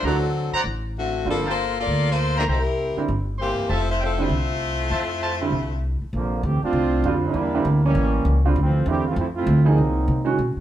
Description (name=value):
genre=jazz, big band swing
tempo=197 BPM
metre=4/4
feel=swing 63% on 8ths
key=F major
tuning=A4 = 440 Hz
part: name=warm saxophone section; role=melody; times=0.0-5.8 s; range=D3 to D5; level=-25 LUFS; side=left 4 dB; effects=plate reverb
part: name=bright upright piano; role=accompaniment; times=0.0-10.4 s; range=D3 to Ab4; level=-25 LUFS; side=right 5 dB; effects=none
part: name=clear trumpet section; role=stabs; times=0.0-5.3 s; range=Bb4 to C6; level=-27 LUFS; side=right 1 dB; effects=none
part: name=upright bass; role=bass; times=0.0-10.6 s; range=F1 to C3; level=-22 LUFS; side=equal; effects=none
part: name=brilliant trombone section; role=second line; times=6.1-10.3 s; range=C3 to G4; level=-24 LUFS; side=right 2 dB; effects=none
room=moderate large studio reverb, RT60 0.9 s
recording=heard from further back in the room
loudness=-19 LUFS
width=side -12 dB against mid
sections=0.0-6.1 A section; 6.1-10.6 B section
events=trombone section solo 6.1-10.6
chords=0.0 D7b13; 1.3 Gm9; 2.5 C7; 3.7 Fmaj7; 6.1 Bbmaj9; 7.3 Em7b5; 8.0 A7b9; 8.6 Dm9; 9.8 Cm7b5